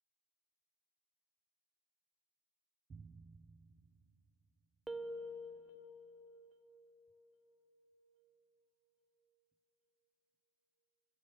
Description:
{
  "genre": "ambient",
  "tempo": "free time",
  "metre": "none",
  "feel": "none",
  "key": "unclear",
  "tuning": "A4 = 439 Hz",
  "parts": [
    { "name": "bell-like tine electric piano", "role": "solo", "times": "4.9-9.5 s", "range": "A#4", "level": "-47 LUFS", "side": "moving between left 3 dB and right 4 dB", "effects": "auto-pan" }
  ],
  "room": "wet huge ambient reverb, RT60 7.7 s",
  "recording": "in a vast, echoing space",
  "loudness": "-46 LUFS",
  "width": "side -10 dB against mid",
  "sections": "0.0-7.1 A section",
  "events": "fade-out 0.0-7.1",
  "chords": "none",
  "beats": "free time"
}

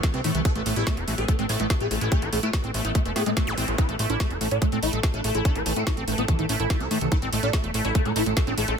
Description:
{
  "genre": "psychedelic trance",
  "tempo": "144 BPM",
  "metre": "4/4",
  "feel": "straight",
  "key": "A minor",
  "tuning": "A4 = 440 Hz",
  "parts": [
    { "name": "swarming rave lead", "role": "melody", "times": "0.0-8.7 s", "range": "E3 to A4", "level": "-29 LUFS", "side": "equal", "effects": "chorus, phaser, sidechain pumping, dub echo" },
    { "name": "pulsing gated texture", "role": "sustained chords", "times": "0.0-8.8 s", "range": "A3 to A4", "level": "-32 LUFS", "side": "right 2 dB", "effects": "chorus, built-in reverb, sidechain pumping" },
    { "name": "liquid acid bass", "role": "riff", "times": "0.0-8.8 s", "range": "A3 to E4", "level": "-32 LUFS", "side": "equal", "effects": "chorus, auto-pan, sidechain pumping, ping-pong delay" },
    { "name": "drum and bass drum kit", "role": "drums", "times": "0.0-8.8 s", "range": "hi-hat, snare drum", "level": "-30 LUFS", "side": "right 1 dB", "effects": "none" },
    { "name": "electronic kick drum", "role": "drums", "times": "0.0-8.5 s", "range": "none", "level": "-25 LUFS", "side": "equal", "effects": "none" },
    { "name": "fat analog bass", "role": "bass", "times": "0.1-8.8 s", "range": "E1 to A2", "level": "-28 LUFS", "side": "equal", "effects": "none" },
    { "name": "swell and zap", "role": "sound effects", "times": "3.1-3.8 s", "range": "none", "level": "-33 LUFS", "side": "equal", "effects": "none" }
  ],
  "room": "little or no reverb",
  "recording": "dense, heavily limited modern master",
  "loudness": "-22 LUFS",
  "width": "side -7 dB against mid",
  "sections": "0.0-8.8 A section",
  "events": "swell 3.1-3.8",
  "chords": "0.0 A5",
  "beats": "0.03 | 0.45 0.87 1.28 1.70 | 2.12 2.53 2.95 3.37 | 3.78 4.20 4.62 5.03 | 5.45 5.87 6.28 6.70 | 7.12 7.53 7.95 8.37 | 8.78"
}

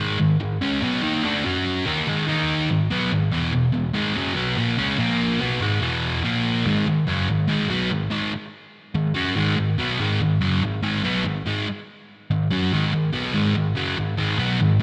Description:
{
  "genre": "rock",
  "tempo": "144 BPM",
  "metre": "4/4",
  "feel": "straight",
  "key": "G# minor",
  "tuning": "A4 = 440 Hz",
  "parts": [
    { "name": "sludgy distorted guitar", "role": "solo", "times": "0.0-14.8 s", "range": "E2 to F#4", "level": "-22 LUFS", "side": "equal", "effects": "overdrive, slapback echo" }
  ],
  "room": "light reverb",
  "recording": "none",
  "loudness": "-22 LUFS",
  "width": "mono",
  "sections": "0.0-6.7 A section; 6.7-14.8 B section",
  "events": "none",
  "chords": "0.0 G#m; 1.4 F#5; 1.9 G#5; 2.3 D#5; 2.7 G#m; 3.3 E5; 5.0 A#5; 5.4 E5; 6.2 A#5; 6.7 G#m",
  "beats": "0.40 0.82 1.24 | 1.65 2.07 2.49 2.90 | 3.32 3.74 4.15 4.57 | 4.99 5.40 5.82 6.24 | 6.65 7.07 7.49 7.91 | 8.33 8.74 9.16 9.58 | 10.00 10.42 10.84 11.25 | 11.67 12.09 12.51 12.93 | 13.35 13.77 14.18 14.60"
}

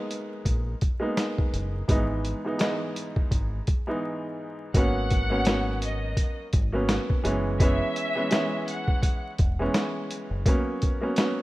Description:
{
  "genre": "hip hop, boom-bap hip-hop",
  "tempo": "84 BPM",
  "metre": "4/4",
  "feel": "swing 57% on 16ths",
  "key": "G# minor",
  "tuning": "A4 = 440 Hz",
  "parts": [
    { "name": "warm grand piano", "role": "accompaniment", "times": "0.0-11.4 s", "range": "G#2 to D#4", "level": "-28 LUFS", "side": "right 1 dB", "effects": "cassette tape, high-pass filter, low-pass filter" },
    { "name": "boom bap sampler-style drum kit", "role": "drums", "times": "0.1-11.4 s", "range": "hi-hat, kick drum, snare drum", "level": "-25 LUFS", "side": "equal", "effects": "none" },
    { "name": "deep dub fingered electric bass", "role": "bass", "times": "0.5-10.4 s", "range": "E1 to A#1", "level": "-29 LUFS", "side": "equal", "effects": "none" },
    { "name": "rich studio violin section", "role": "melody", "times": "4.7-9.2 s", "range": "D#5 to F#5", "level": "-31 LUFS", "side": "left 1 dB", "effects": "high-pass filter, low-pass filter" }
  ],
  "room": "light reverb",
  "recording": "rough home demo mix, vinyl crackle",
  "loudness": "-24 LUFS",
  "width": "side -18 dB against mid",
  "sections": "0.0-4.7 A section; 4.7-11.4 B section",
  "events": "break 4.0-4.7",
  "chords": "0.0 G#madd9; 1.9 Emaj7/G#; 4.7 G#m11; 7.2 F#7sus4; 10.5 F#add11",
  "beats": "0.46 1.17 | 1.89 2.60 3.31 4.03 | 4.74 5.46 6.17 6.89 | 7.60 8.31 9.03 9.74 | 10.46 11.17"
}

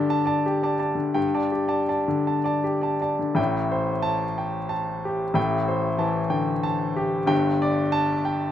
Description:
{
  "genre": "neoclassical minimalist piano",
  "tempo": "53-62 BPM (dotted quarters)",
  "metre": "6/8",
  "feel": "rubato",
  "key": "A minor",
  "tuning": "A4 = 440 Hz",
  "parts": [
    { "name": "clear concert grand piano", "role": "solo", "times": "0.0-8.5 s", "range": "G1 to A5", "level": "-22 LUFS", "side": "left 1 dB", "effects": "slapback echo" }
  ],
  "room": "light reverb",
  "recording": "recorded outdoors, with no room sound",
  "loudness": "-22 LUFS",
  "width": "side -10 dB against mid",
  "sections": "0.0-3.4 A section; 3.4-8.5 B section",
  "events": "none",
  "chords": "0.0 Gsus2; 3.4 Am7; 7.3 Gsus2",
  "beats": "0.09 | 1.17 2.28 | 3.38 4.38 | 5.37 6.33 | 7.31 8.28"
}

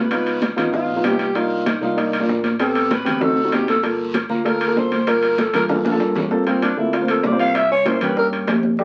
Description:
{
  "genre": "Afro-Cuban jazz",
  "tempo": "194 BPM",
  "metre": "4/4",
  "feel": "straight",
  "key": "G minor",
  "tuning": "A4 = 441 Hz",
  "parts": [
    { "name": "growling alto saxophone", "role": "melody", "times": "0.0-8.3 s", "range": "C4 to F5", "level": "-23 LUFS", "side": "equal", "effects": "none" },
    { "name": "fingered electric bass", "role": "bass", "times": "0.0-8.8 s", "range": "G1 to G2", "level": "-33 LUFS", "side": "equal", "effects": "none" },
    { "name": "dark baby grand piano", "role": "accompaniment", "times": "0.1-8.8 s", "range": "A3 to C5", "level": "-23 LUFS", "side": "equal", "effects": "none" },
    { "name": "bongos", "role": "percussion", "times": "0.1-8.8 s", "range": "none", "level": "-32 LUFS", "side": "equal", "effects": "none" },
    { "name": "congas", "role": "percussion", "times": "0.1-8.8 s", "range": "none", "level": "-27 LUFS", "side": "equal", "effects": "none" },
    { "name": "guiro", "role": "percussion", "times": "0.1-6.3 s", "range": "none", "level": "-41 LUFS", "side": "equal", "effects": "none" },
    { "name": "timbales", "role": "percussion", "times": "0.1-8.6 s", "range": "none", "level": "-28 LUFS", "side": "equal", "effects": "none" }
  ],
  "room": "wet studio reverb, RT60 0.5 s",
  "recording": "very old 78 rpm record, vinyl crackle, nothing above 11.0 kHz",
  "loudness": "-19 LUFS",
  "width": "mono",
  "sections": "0.0-6.3 A section; 6.3-8.8 A section",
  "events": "alto saxophone solo 0.0-8.8; drum fill 5.7-6.3",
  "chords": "0.1 C#9; 1.4 Cm9; 2.6 Am9; 3.2 D7b9; 3.8 Gm9; 6.3 Gm11; 7.5 C7(no3)",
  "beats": "| 0.11 0.42 0.73 1.04 | 1.35 1.67 1.98 2.29 | 2.60 2.90 3.21 3.52 | 3.83 4.14 4.45 4.76 | 5.07 5.38 5.69 6.00 | 6.31 6.62 6.93 7.24 | 7.55 7.86 8.17 8.48 | 8.79"
}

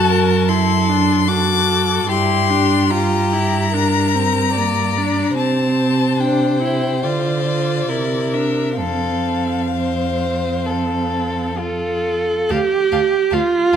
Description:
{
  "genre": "classical, slow romantic movement for string quartet",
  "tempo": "64-76 BPM",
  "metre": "4/4",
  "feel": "rubato",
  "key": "F major",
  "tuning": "A4 = 440 Hz",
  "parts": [
    { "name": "warm violin", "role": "melody", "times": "0.0-13.8 s", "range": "D5 to D6", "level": "-22 LUFS", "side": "left 9 dB", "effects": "none" },
    { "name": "rich violin", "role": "second line", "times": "0.0-13.8 s", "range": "F4 to F5", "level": "-23 LUFS", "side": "left 3 dB", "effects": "none" },
    { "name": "rich viola", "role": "accompaniment", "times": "0.0-13.8 s", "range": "Bb3 to A4", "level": "-20 LUFS", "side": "right 2 dB", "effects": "none" },
    { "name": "warm cello", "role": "bass", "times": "0.0-13.8 s", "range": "D2 to D3", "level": "-21 LUFS", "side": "right 4 dB", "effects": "none" }
  ],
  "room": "moderate recital hall reverb, RT60 1.5 s",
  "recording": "none",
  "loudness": "-15 LUFS",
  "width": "side -8 dB against mid",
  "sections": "0.0-12.5 A section; 12.5-13.8 B section",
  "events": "none",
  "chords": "0.0 D7/F#; 2.1 Gm7; 5.4 C; 7.0 Dm; 7.9 C9; 8.8 F; 12.5 Dm",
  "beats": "0.49 1.29 | 2.09 2.91 3.74 4.57 | 5.38 6.20 7.04 7.89 | 8.79 9.72 10.66 11.59 | 12.50 13.32"
}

